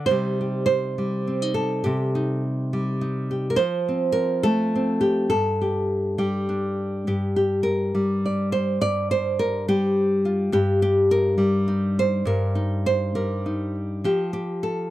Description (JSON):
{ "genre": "folk, solo fingerstyle acoustic guitar", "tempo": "69 BPM (dotted quarters)", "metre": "6/8", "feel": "rubato", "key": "G minor", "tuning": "A4 = 441 Hz", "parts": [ { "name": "nylon-string guitar", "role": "solo", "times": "0.0-14.9 s", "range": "G2 to D5", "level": "-21 LUFS", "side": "equal", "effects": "none" } ], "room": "little or no reverb", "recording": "dry, close 1970s-style studio recording", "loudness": "-21 LUFS", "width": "side -14 dB against mid", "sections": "0.0-7.1 A section; 7.1-14.9 B section", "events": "none", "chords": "0.1 Cm; 3.6 F; 5.3 G5; 7.1 Gm; 10.5 Eb/G; 14.0 F" }